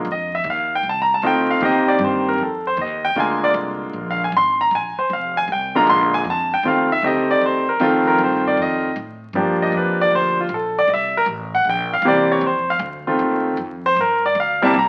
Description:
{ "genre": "jazz piano trio", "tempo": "155 BPM", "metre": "4/4", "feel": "swing 67% on 8ths", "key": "F mixolydian", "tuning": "A4 = 440 Hz", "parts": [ { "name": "clear concert grand piano", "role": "melody", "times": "0.0-14.9 s", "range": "C3 to C6", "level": "-19 LUFS", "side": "equal", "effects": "none" }, { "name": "upright bass", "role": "bass", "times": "0.0-14.9 s", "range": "F1 to A2", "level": "-33 LUFS", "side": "equal", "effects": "none" } ], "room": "wet studio reverb, RT60 1.0 s", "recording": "very old 78 rpm record, vinyl crackle", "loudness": "-19 LUFS", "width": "mono", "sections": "0.0-14.9 A section", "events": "grand piano solo 0.0-14.9", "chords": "0.1 F7; 1.6 Cm7; 2.4 Ebsus2; 3.2 Bb7; 6.3 F7; 9.3 Gm7; 10.9 C7; 12.4 F7; 14.0 Gm" }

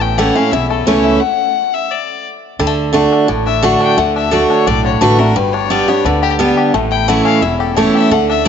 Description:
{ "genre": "bluegrass", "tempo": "174 BPM", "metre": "4/4", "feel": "straight", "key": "D major", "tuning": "A4 = 440 Hz", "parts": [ { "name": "bluegrass banjo", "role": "melody", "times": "0.0-8.5 s", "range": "D3 to G4", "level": "-20 LUFS", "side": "left 10 dB", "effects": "none" }, { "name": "clear fiddle", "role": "melody", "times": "0.0-8.5 s", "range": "G4 to G5", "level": "-18 LUFS", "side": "left 11 dB", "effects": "none" }, { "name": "picked steel-string acoustic guitar", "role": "accompaniment", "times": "0.0-8.5 s", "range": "E2 to G4", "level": "-13 LUFS", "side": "right 3 dB", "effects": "none" }, { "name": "upright bass", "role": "bass", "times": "0.0-8.5 s", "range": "E1 to D2", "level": "-20 LUFS", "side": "right 1 dB", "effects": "none" } ], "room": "moderate plate reverb, RT60 2.7 s", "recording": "1960s-style stereo, nothing above 7.7 kHz", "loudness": "-11 LUFS", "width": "side -7 dB against mid", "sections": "0.0-2.6 A section; 2.6-8.5 B section", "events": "stop 1.2-2.6", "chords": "0.0 A; 1.2 N.C.; 2.6 D; 5.4 G; 6.7 A" }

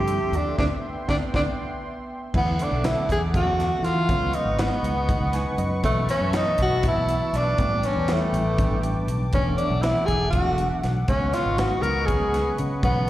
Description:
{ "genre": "electric jazz fusion", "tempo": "240 BPM (eighths)", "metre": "7/8", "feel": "straight", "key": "unclear", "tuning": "A4 = 440 Hz", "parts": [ { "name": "warm tenor saxophone", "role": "melody", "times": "0.0-13.1 s", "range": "A3 to A#4", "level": "-25 LUFS", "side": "equal", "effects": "plate reverb, slapback echo, tape echo" }, { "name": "reed electric piano", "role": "accompaniment", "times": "0.0-13.1 s", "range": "D3 to G#5", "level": "-30 LUFS", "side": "right 1 dB", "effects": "fast tremolo, plate reverb, slapback echo" }, { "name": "warm analog pad", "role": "sustained chords", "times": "0.0-13.1 s", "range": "B3 to D6", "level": "-32 LUFS", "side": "equal", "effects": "chorus, plate reverb" }, { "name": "fingered electric bass", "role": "bass", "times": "0.0-13.1 s", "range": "E1 to E3", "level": "-26 LUFS", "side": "equal", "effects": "none" }, { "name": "crisp fusion drum kit", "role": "drums", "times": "0.1-13.1 s", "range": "crash cymbal, hi-hat, kick drum, snare drum", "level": "-28 LUFS", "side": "equal", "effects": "none" } ], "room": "moderate club reverb, RT60 0.5 s", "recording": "live gig heard through the venue's PA, recital hall reverb", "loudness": "-21 LUFS", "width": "side -14 dB against mid", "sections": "0.0-2.3 A section; 2.3-13.1 B section", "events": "band accent 0.6-2.3; drum fill 0.8-2.3; reed electric piano fill 5.1-5.8", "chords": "0.0 G13sus4; 0.6 D13sus4; 2.3 E9sus4; 4.1 C#9sus4; 5.8 B9sus4; 7.6 A9sus4; 9.3 E9sus4; 11.1 C#9sus4" }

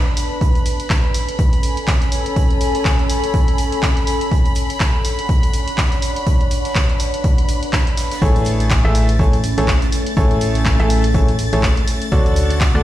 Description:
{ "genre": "piano house", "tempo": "123 BPM", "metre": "4/4", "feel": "swing 58% on 16ths", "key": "A major", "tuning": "A4 = 440 Hz", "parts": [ { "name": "rich chamber violin section", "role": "sustained chords", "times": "0.0-12.8 s", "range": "B5 to A6", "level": "-28 LUFS", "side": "right 1 dB", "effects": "sidechain pumping" }, { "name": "deep dark ambient pad", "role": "texture", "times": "0.0-12.8 s", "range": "A3 to A5", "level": "-24 LUFS", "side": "left 1 dB", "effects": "chorus, built-in reverb, sidechain pumping" }, { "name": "huge arena drum kit", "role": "drums", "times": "0.2-12.7 s", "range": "hi-hat, snare drum", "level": "-35 LUFS", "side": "right 3 dB", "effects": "high-pass filter on hats, high-pass filter on snare, high-pass filter on room" }, { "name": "punchy analog drum machine", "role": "drums", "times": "0.2-12.7 s", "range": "handclaps, hi-hat", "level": "-24 LUFS", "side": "equal", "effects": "none" }, { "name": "electronic kick drum", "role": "drums", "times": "0.4-12.7 s", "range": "none", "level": "-17 LUFS", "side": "equal", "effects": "none" }, { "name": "bright grand piano", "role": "riff", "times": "8.2-12.8 s", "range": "D3 to E5", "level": "-20 LUFS", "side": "left 1 dB", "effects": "sidechain pumping, digital delay" }, { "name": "organ-like FM bass", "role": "bass", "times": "8.2-12.8 s", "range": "A1 to D2", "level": "-17 LUFS", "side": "equal", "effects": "sidechain pumping" } ], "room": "small room ambience", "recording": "played on a big sound system in a bare room, large studio reverb", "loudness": "-14 LUFS", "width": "side -14 dB against mid", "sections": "0.0-12.8 A section", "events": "none", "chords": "0.4 Amaj7; 11.9 Dmaj7" }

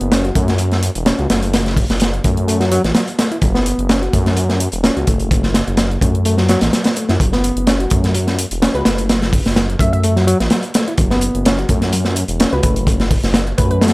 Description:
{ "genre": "breakbeat, breaks", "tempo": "127 BPM", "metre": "4/4", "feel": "swing 54% on 16ths", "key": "F# minor", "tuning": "A4 = 441 Hz", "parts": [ { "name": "reed electric piano", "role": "riff", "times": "0.0-13.9 s", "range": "E3 to F#4", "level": "-20 LUFS", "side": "equal", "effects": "fast tremolo, tube saturation, analog delay" }, { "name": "dark detuned saw bass", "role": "bass", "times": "0.0-13.9 s", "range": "E1 to F#2", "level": "-18 LUFS", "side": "equal", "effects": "none" }, { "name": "electronic hi-hat", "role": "drums", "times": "0.0-13.9 s", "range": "none", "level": "-30 LUFS", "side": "left 1 dB", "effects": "none" }, { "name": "crunchy breakbeat drum kit", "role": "drums", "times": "0.1-13.9 s", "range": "hi-hat, kick drum, snare drum", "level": "-16 LUFS", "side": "equal", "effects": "none" }, { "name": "glassy wavetable pluck", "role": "melody", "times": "8.7-13.8 s", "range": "B4 to E5", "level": "-24 LUFS", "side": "equal", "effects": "chorus, AM radio sound, analog delay" } ], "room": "little or no reverb", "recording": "dry, gritty hardware recording", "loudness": "-13 LUFS", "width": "side -22 dB against mid", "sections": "0.0-13.9 A section", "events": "none", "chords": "0.0 F#m" }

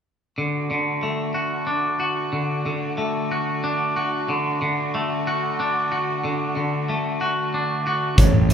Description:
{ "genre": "post-rock", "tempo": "62 BPM (dotted quarters)", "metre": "6/8", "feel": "straight", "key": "D major", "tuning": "A4 = 440 Hz", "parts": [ { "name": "rich chamber string section", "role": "sustained chords", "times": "0.4-8.5 s", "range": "C#3 to G4", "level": "-31 LUFS", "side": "right 1 dB", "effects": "none" }, { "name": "twangy electric guitar", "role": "arpeggios", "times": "0.4-8.5 s", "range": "A2 to F#4", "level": "-22 LUFS", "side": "equal", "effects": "none" }, { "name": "felt-muted upright piano", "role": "arpeggios", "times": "8.2-8.5 s", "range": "C#5", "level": "-27 LUFS", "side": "right 5 dB", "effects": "none" }, { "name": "fuzz fingered electric bass", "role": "bass", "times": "8.2-8.5 s", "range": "A1", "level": "-19 LUFS", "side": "right 1 dB", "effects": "overdrive" }, { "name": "huge arena drum kit", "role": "drums", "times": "8.2-8.5 s", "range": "hi-hat, kick drum", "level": "-15 LUFS", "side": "equal", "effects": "none" } ], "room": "wet large studio reverb, RT60 1.3 s", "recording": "band playing live in one room", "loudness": "-21 LUFS", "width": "side -8 dB against mid", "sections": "0.4-8.5 A section", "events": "none", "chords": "0.4 D" }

